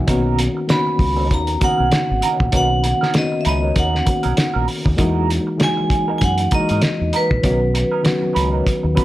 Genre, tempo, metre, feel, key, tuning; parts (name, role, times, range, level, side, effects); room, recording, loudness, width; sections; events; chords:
lush 1970s-style soul; 98 BPM; 4/4; swing 58% on 16ths; B major; A4 = 439 Hz
mellow reed electric piano; accompaniment; 0.0-9.0 s; C#3 to F#5; -22 LUFS; left 2 dB; medium tremolo
fingered electric bass; bass; 0.0-9.0 s; G#1 to G#2; -20 LUFS; equal
electric guitar through a small old amp; riff; 0.1-9.0 s; F#3 to B4; -26 LUFS; right 7 dB; wah
cloth-damped thuddy drum kit; drums; 0.1-9.0 s; hi-hat, kick drum, snare drum; -20 LUFS; equal
vibraphone with hard mallets; melody; 0.7-9.0 s; B4 to B5; -21 LUFS; right 1 dB
light reverb; -15 LUFS; side -15 dB against mid
0.0-9.0 A section
0.1 Bmaj9; 5.0 Emaj9#11; 7.4 Bmaj9